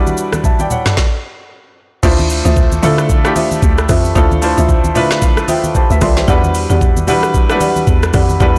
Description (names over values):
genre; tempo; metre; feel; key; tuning
amapiano; 113 BPM; 4/4; swing 58% on 16ths; D dorian; A4 = 440 Hz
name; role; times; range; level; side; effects
clear concert grand piano; accompaniment; 0.0-8.6 s; F#3 to C6; -19 LUFS; equal; none
smooth R&B drum kit; drums; 0.1-8.6 s; crash cymbal, hi-hat, kick drum, rim click, shaker, snare drum, toms; -17 LUFS; equal; soft clipping on snare
congas; percussion; 0.1-8.6 s; none; -24 LUFS; equal; none
folk marimba with medium mallets; stabs; 2.0-8.6 s; F4 to F#5; -21 LUFS; equal; delay
hollow log drum bass; bass; 2.0-8.6 s; C2 to E3; -17 LUFS; equal; none
room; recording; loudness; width
light reverb; blown-out, overdriven recording, overdrive; -13 LUFS; mono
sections
0.0-2.0 A section; 2.0-8.6 B section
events
stop 1.0-2.0; drop 2.0-8.6; grand piano fill 4.7-6.3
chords
0.0 Em9; 2.0 Dm9; 6.3 Em9